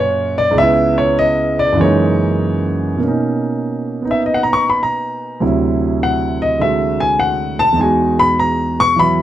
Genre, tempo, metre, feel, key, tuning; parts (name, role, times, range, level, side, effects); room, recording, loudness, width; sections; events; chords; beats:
solo jazz; 100 BPM; 4/4; swing 68% on 8ths, rubato; F# major, B major from 3.0 s; A4 = 442 Hz
warm grand piano; solo; 0.0-9.2 s; C#2 to C#6; -13 LUFS; equal
light reverb; dark, warm production, nothing above 10.6 kHz; -13 LUFS; side -12 dB against mid
0.0-3.0 A section; 3.0-9.2 A section
grand piano solo 0.0-9.2
0.0 F#maj7; 0.6 C#m7; 1.8 F#13; 3.0 Bmaj9; 5.4 D9; 7.8 Emaj9
| 0.56 1.17 1.78 2.40 | 3.02 3.63 4.23 4.83 | 5.42 6.01 6.61 7.19 | 7.78 8.37 8.97